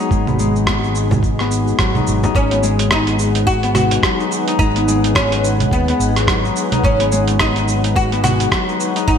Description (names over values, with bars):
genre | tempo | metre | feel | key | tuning
organic downtempo | 107 BPM | 4/4 | swing 58% on 16ths | G# minor pentatonic | A4 = 442 Hz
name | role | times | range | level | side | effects
granular cloud pad | sustained chords | 0.0-9.2 s | G#3 to F#5 | -24 LUFS | left 2 dB | built-in reverb, sidechain pumping
Celtic harp | arpeggios | 0.0-9.2 s | F#3 to D#4 | -20 LUFS | left 5 dB | ping-pong delay
dusty soul sampler-style drum kit | drums | 0.0-9.2 s | congas, hi-hat, rim click, shaker | -20 LUFS | right 2 dB | gated reverb
mellow fretless electric bass | bass | 0.1-9.2 s | G#1 to D#2 | -19 LUFS | right 1 dB | sidechain pumping
electronic kick drum | drums | 0.1-9.2 s | none | -20 LUFS | right 1 dB | none
frame drum | percussion | 0.7-2.3 s | none | -25 LUFS | left 1 dB | none
oud | melody | 2.4-9.2 s | B3 to F#4 | -20 LUFS | equal | digital delay
room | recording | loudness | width
moderate lush hall reverb, RT60 2.0 s, digital ambience | bright 1980s-style digital production | -14 LUFS | side -7 dB against mid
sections
0.0-2.4 A section; 2.4-9.2 B section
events
none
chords
0.0 G#m7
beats
| 0.11 0.67 1.23 1.79 | 2.35 2.91 3.47 4.04 | 4.59 5.16 5.72 6.28 | 6.84 7.40 7.96 8.52 | 9.08